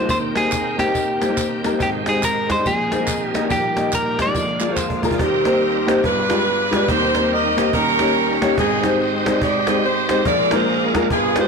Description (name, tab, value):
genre	uptempo gospel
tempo	142 BPM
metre	4/4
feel	swing 63% on 8ths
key	Eb major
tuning	A4 = 438 Hz
part	clean electric guitar	melody	0.0-5.0 s	G4 to D5	-21 LUFS	equal	none
part	clear baby grand piano	accompaniment	0.0-11.5 s	G1 to F5	-21 LUFS	left 2 dB	none
part	bright tonewheel organ	sustained chords	0.0-11.5 s	Eb2 to G5	-25 LUFS	right 3 dB	slow rotary speaker, chorus vibrato
part	cajon	drums	0.1-11.4 s	none	-27 LUFS	right 1 dB	none
part	tambourine and handclaps	percussion	0.1-5.1 s	none	-30 LUFS	right 1 dB	none
part	warm saxophone section	melody	5.2-11.5 s	Bb3 to Eb5	-18 LUFS	right 1 dB	none
room	moderate echo chamber reverb, RT60 1.6 s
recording	blown-out, overdriven recording, overdrive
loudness	-16 LUFS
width	side -5 dB against mid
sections	0.0-5.2 A section; 5.2-11.5 B section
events	drum fill 4.3-5.2; grand piano fill 4.6-5.2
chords	0.1 Eb6; 1.8 Abmaj7; 2.6 Bb9sus4; 3.5 Eb/Bb; 4.3 Bb7; 5.2 Eb6; 6.0 G7b9; 6.9 Cm7/Eb; 7.7 Eb7; 8.6 Abmaj7; 10.3 Bb7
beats	| 0.10 0.52 0.95 1.37 | 1.80 2.22 2.65 3.07 | 3.50 3.92 4.34 4.77 | 5.19 5.62 6.04 6.46 | 6.88 7.31 7.73 8.15 | 8.57 9.00 9.42 9.84 | 10.26 10.69 11.11